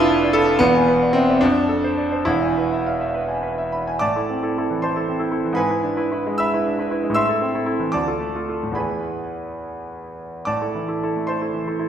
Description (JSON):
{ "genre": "classical, romantic character piece for solo piano", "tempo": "65-82 BPM (dotted quarters)", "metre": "6/8", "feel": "rubato", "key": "A minor", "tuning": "A4 = 440 Hz", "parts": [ { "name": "bright concert grand piano", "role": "solo", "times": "0.0-11.9 s", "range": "E1 to E6", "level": "-18 LUFS", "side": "right 1 dB", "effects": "none" } ], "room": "wet recital hall reverb, RT60 1.4 s", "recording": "heard from further back in the room", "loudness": "-18 LUFS", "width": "side -9 dB against mid", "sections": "0.0-4.0 A section; 4.0-11.9 B section", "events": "none", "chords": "0.0 Bm7b5/F; 0.6 E7; 1.4 F; 2.3 E; 4.0 Am; 5.6 E7/G#; 7.2 Am; 7.9 Dm; 8.8 E; 10.5 Am", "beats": "| 0.60 1.42 | 2.27 3.16 | 4.04 4.83 | 5.57 6.39 | 7.16 7.93 | 8.77 9.62 | 10.46 11.28" }